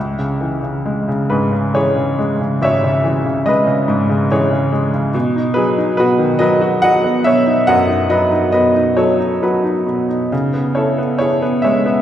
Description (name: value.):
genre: classical, lyrical solo piano.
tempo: 70 BPM.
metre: 3/4.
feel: uneven beats, rubato.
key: C# minor.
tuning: A4 = 439 Hz.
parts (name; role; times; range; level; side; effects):
bright upright piano; solo; 0.0-12.0 s; G#1 to F#5; -13 LUFS; equal; none.
room: wet scoring stage reverb, RT60 1.6 s.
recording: recorded in a church or concert hall.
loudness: -13 LUFS.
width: side -10 dB against mid.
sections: 0.0-12.0 A section.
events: none.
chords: 0.0 C#m7; 5.1 B7; 10.3 C#m7.